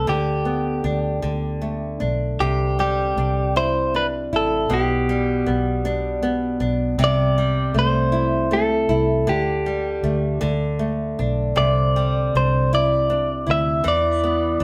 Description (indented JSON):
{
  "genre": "six-eight pop ballad",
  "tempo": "52 BPM (dotted quarters)",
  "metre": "6/8",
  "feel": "straight",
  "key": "unclear",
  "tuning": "A4 = 440 Hz",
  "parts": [
    { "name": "direct-recorded clean electric guitar", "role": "melody", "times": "0.0-14.6 s", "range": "G4 to E5", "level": "-24 LUFS", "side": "equal", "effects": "none" },
    { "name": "flamenco guitar", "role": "accompaniment", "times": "0.0-14.6 s", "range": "B2 to B4", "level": "-26 LUFS", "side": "equal", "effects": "none" },
    { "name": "vintage muted fingered electric bass", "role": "bass", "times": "0.0-14.6 s", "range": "A1 to E2", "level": "-26 LUFS", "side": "equal", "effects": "none" }
  ],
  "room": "moderate studio reverb, RT60 0.8 s",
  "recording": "band playing live in one room",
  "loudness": "-21 LUFS",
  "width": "mono",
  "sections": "0.0-2.4 A section; 2.4-14.6 B section",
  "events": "none",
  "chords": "0.1 G/D; 1.2 D5; 2.4 Cadd9; 4.7 G/B; 7.0 C6; 9.3 Dsus4; 10.4 D5; 11.6 Cadd9; 13.8 Em7",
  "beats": "| 0.09 1.24 | 2.40 3.56 | 4.71 5.85 | 6.99 8.13 | 9.27 10.41 | 11.56 12.71 | 13.85"
}